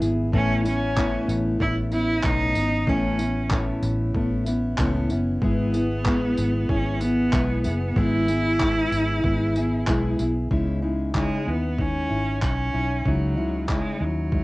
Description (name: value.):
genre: acoustic pop.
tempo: 94 BPM.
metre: 4/4.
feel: swing 55% on 16ths.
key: unclear.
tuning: A4 = 441 Hz.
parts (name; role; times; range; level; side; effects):
fingerpicked steel-string acoustic guitar; accompaniment; 0.0-14.4 s; A2 to G#4; -25 LUFS; left 1 dB; cassette tape, plate reverb.
vintage muted fingered electric bass; bass; 0.0-14.4 s; F#1 to D#2; -26 LUFS; equal; none.
dusty soul sampler-style drum kit; drums; 0.0-14.4 s; handclaps, kick drum, tambourine; -27 LUFS; equal; overdrive, cassette tape.
bright cello; melody; 0.3-14.4 s; F#3 to E4; -26 LUFS; equal; cassette tape, plate reverb.
room: moderate small room reverb, RT60 0.5 s.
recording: home recording on cassette.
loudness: -21 LUFS.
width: side -20 dB against mid.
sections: 0.0-10.5 A section; 10.5-14.4 B section.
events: none.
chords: 0.3 Aadd9; 5.4 E; 10.5 C#madd9.